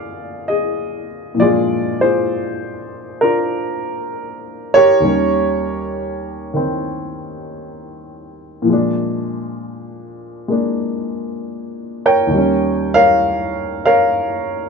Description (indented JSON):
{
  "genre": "solo jazz",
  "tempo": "66 BPM",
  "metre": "4/4",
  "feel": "swing 67% on 8ths",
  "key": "unclear",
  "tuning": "A4 = 440 Hz",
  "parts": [
    { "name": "warm baby grand piano", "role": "solo", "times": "0.0-14.7 s", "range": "Eb2 to G5", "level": "-16 LUFS", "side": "equal", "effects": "none" }
  ],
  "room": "moderate studio ambience, RT60 0.5 s",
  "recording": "band playing live in one room, nothing above 7.5 kHz",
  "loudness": "-15 LUFS",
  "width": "side -4 dB against mid",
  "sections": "0.0-14.7 A section",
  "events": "none",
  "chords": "0.0 Bb7; 5.0 Eb7; 8.7 Bb7; 12.3 Eb7"
}